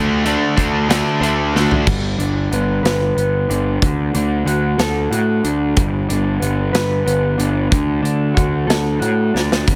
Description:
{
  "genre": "quiet-loud alternative rock",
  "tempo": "62 BPM (dotted quarters)",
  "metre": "6/8",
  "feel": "straight",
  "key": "G major",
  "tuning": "A4 = 438 Hz",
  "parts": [
    { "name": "electric guitar through a small old amp", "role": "arpeggios", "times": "0.0-9.8 s", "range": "D3 to C5", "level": "-23 LUFS", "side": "equal", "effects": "tape echo" },
    { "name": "crunchy overdriven guitar", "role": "riff", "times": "0.0-1.9 s", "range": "D3 to D4", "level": "-19 LUFS", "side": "equal", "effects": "none" },
    { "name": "fuzz picked electric bass", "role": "bass", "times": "0.0-9.8 s", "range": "G1 to A2", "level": "-21 LUFS", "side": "equal", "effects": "overdrive" },
    { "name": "big rock drum kit", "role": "drums", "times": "0.3-9.8 s", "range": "crash cymbal, hi-hat, kick drum, snare drum, toms", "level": "-22 LUFS", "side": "equal", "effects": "none" }
  ],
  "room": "light reverb, small room reverb",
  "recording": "none",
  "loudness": "-17 LUFS",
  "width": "mono",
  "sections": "0.0-1.9 A section; 1.9-9.8 B section",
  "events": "drum fill 1.5-1.9, 9.3-9.7",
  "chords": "0.0 D7; 1.9 G; 3.8 D; 5.8 G; 7.7 D"
}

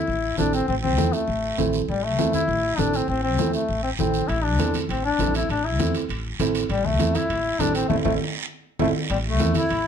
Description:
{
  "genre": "latin, cumbia",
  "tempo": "200 BPM",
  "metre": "4/4",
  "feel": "straight",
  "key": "A minor",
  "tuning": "A4 = 440 Hz",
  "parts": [
    { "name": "clear duduk", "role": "melody", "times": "0.0-9.9 s", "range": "G3 to E4", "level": "-24 LUFS", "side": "left 3 dB", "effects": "none" },
    { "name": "upright bass", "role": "bass", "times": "0.1-9.9 s", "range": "A1 to E2", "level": "-26 LUFS", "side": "equal", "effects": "none" },
    { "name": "guiro", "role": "percussion", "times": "0.1-9.9 s", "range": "none", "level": "-34 LUFS", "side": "right 6 dB", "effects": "none" },
    { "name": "congas", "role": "percussion", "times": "0.2-9.9 s", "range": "none", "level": "-29 LUFS", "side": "left 4 dB", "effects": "none" },
    { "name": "dark upright piano", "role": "accompaniment", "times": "0.4-9.6 s", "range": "C4 to A4", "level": "-27 LUFS", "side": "right 8 dB", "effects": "none" },
    { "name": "timbales", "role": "percussion", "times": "4.3-9.9 s", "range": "none", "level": "-34 LUFS", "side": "right 6 dB", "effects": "none" },
    { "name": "accordion", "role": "second line", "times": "9.1-9.9 s", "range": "A3 to E4", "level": "-28 LUFS", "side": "equal", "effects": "light tremolo tuning" }
  ],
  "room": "moderate studio reverb, RT60 0.7 s",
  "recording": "dark, warm production",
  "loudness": "-20 LUFS",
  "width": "side -8 dB against mid",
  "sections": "0.0-9.1 A section",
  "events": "band accent 7.9-9.1; drum fill 8.4-9.1",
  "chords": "0.0 Am"
}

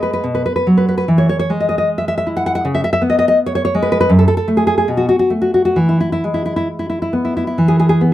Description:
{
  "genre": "romantic piece for solo classical guitar",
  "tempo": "64-84 BPM",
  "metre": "2/4",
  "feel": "rubato",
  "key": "E major",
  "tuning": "A4 = 441 Hz",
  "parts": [
    { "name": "nylon-string guitar", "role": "solo", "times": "0.0-8.1 s", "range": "F#2 to F#5", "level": "-13 LUFS", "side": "equal", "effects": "none" }
  ],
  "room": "light reverb",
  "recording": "none",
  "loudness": "-13 LUFS",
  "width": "side -13 dB against mid",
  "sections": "0.0-7.6 A section",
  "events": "none",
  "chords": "0.2 B5; 1.1 E; 2.6 C#5; 4.1 F#m; 4.9 F#madd11/B; 5.8 E"
}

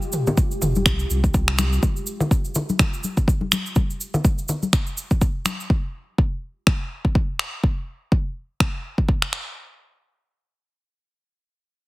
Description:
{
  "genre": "afro house",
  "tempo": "124 BPM",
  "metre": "4/4",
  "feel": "swing 57% on 16ths",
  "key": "F minor",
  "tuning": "A4 = 440 Hz",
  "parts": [
    { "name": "ethereal airy pad", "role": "sustained chords", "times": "0.0-1.8 s", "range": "Ab3 to G4", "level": "-33 LUFS", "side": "equal", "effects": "ensemble chorus, built-in reverb, sidechain pumping" },
    { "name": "cabasa", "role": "percussion", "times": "0.0-5.7 s", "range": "none", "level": "-32 LUFS", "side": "right 3 dB", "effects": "none" },
    { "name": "deep house drum kit", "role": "drums", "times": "0.1-9.4 s", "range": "finger snaps, toms", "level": "-23 LUFS", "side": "equal", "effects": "none" },
    { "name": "congas", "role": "percussion", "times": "0.3-5.6 s", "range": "none", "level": "-25 LUFS", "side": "left 2 dB", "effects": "none" },
    { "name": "electronic kick drum", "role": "drums", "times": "0.4-9.2 s", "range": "none", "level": "-20 LUFS", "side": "equal", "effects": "none" },
    { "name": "warm sub bass", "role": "bass", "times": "0.6-1.8 s", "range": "F1 to C2", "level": "-22 LUFS", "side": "equal", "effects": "sidechain pumping" }
  ],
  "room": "digital ambience",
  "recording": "heavily compressed radio sound",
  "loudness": "-20 LUFS",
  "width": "side -20 dB against mid",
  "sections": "0.0-9.6 A section; 9.6-11.9 B section",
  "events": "filter sweep on ambient pad 0.0-1.8",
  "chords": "0.0 Fmadd9; 1.8 N.C."
}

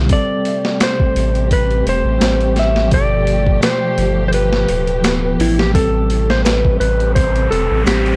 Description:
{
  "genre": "trip hop",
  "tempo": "85 BPM",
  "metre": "4/4",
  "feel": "swing 54% on 16ths",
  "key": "A minor",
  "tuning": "A4 = 439 Hz",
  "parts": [
    { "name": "bell-like tine electric piano", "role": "accompaniment", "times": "0.0-8.2 s", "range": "B2 to C5", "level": "-24 LUFS", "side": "equal", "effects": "tremolo" },
    { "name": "round analog bass", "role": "bass", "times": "0.0-8.2 s", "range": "D1 to A1", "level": "-20 LUFS", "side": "equal", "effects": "tube saturation" },
    { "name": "clean lap steel guitar", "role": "melody", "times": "0.1-8.2 s", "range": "E4 to E5", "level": "-21 LUFS", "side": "equal", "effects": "tape echo" },
    { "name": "dark symphonic string section", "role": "sustained chords", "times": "0.1-8.2 s", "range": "C3 to G4", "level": "-27 LUFS", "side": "equal", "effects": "none" },
    { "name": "boom bap sampler-style drum kit", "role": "drums", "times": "0.1-8.2 s", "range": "hi-hat, kick drum, snare drum", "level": "-21 LUFS", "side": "equal", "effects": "none" },
    { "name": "maracas", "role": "percussion", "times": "0.8-8.0 s", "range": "none", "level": "-37 LUFS", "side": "equal", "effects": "none" },
    { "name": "riser", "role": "sound effects", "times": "6.7-8.2 s", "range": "none", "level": "-30 LUFS", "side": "equal", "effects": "none" }
  ],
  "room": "little or no reverb",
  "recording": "dry, gritty hardware recording, cassette tape",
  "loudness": "-15 LUFS",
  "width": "mono",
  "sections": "0.0-8.2 A section",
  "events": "riser 6.7-8.2",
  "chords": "0.1 Am7; 2.9 G9; 5.7 Am7"
}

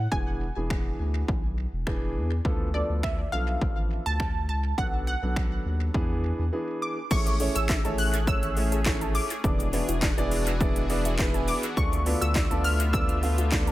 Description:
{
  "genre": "dance-pop",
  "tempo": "103 BPM",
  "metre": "4/4",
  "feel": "straight",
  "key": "A major",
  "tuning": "A4 = 440 Hz",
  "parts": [
    { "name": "analog pluck", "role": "melody", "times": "0.0-13.7 s", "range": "D5 to F#6", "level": "-32 LUFS", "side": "equal", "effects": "chorus, tape echo" },
    { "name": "saturated sub bass", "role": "bass", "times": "0.0-13.7 s", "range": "E1 to E2", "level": "-28 LUFS", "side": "equal", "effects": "sidechain pumping" },
    { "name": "warm concert grand piano", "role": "accompaniment", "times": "0.1-13.7 s", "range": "E3 to F5", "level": "-32 LUFS", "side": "right 2 dB", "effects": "sidechain pumping, tape echo" },
    { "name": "house drum kit", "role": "drums", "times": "0.1-13.7 s", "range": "crash cymbal, finger snaps, handclaps, hi-hat, kick drum, shaker, snare drum", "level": "-28 LUFS", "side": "equal", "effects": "overdrive, tape echo" },
    { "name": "sweeping resonant pad", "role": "sustained chords", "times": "7.1-13.7 s", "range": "D3 to E5", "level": "-35 LUFS", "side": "left 2 dB", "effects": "chorus, sidechain pumping" },
    { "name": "glassy wavetable pluck", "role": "arpeggios", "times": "7.1-13.7 s", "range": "D3 to G#6", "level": "-37 LUFS", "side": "left 2 dB", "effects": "chorus, sidechain pumping, tape echo" },
    { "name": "group handclap", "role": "percussion", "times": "7.7-13.7 s", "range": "none", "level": "-41 LUFS", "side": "left 2 dB", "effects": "none" }
  ],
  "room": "digital ambience",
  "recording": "echo-heavy mix",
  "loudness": "-24 LUFS",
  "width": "side -16 dB against mid",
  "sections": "0.0-7.1 A section; 7.1-13.7 B section",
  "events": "break 6.5-7.1",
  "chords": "0.1 E7; 2.4 Dm6; 4.8 Bm7; 5.9 E7; 7.1 Amaj7; 9.4 E7; 11.8 Dm6"
}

